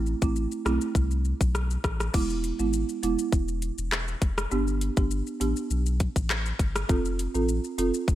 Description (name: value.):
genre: dancehall.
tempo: 101 BPM.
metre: 4/4.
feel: straight.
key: unclear.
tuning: A4 = 441 Hz.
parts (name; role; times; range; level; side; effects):
folk marimba with medium mallets; accompaniment; 0.0-7.9 s; G#3 to A4; -29 LUFS; right 4 dB; none.
warm sub bass; bass; 0.0-8.2 s; E1 to C2; -28 LUFS; left 1 dB; none.
island pop drum kit; drums; 0.1-8.2 s; crash cymbal, handclaps, hi-hat, kick drum, rim click, shaker; -27 LUFS; left 1 dB; overdrive, gated reverb.
room: light reverb.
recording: bright 1980s-style digital production.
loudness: -24 LUFS.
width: side -13 dB against mid.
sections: 0.0-2.1 A section; 2.1-8.2 B section.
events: none.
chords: 0.0 Am; 2.1 E; 4.5 G; 6.9 F.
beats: 0.36 0.95 1.55 | 2.14 2.73 3.33 3.92 | 4.52 5.11 5.71 6.30 | 6.89 7.49 8.08.